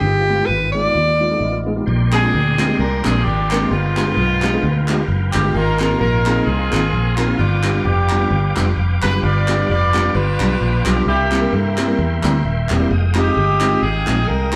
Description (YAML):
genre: uptempo gospel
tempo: 130 BPM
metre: 4/4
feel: swing 56% on 8ths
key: unclear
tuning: A4 = 444 Hz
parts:
  - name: edgy alto saxophone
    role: melody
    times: 0.0-1.6 s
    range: G4 to D5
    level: -20 LUFS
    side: equal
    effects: none
  - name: mellow tine electric piano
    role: accompaniment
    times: 0.0-14.6 s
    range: G2 to Bb5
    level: -24 LUFS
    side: equal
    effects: none
  - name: tonewheel organ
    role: sustained chords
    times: 0.0-14.6 s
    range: Eb3 to Eb6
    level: -30 LUFS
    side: equal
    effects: fast rotary speaker, chorus vibrato
  - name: fingered electric bass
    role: bass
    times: 0.0-14.6 s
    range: Eb1 to G2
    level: -21 LUFS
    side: equal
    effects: none
  - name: clear saxophone section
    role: melody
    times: 2.1-14.6 s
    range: Ab3 to D5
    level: -22 LUFS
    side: equal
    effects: none
  - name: group handclap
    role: percussion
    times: 2.1-14.6 s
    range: none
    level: -30 LUFS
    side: equal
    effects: none
room: wet large studio reverb, RT60 1.4 s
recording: band playing live in one room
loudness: -17 LUFS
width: mono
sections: 0.0-1.9 A section; 1.9-14.6 B section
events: tine electric piano fill 1.2-1.9, 12.0-12.9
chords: 0.0 G7b9b13; 1.9 Bb13; 3.7 G7b9; 5.6 Ab69; 7.4 G7; 11.1 C7; 12.9 Fm9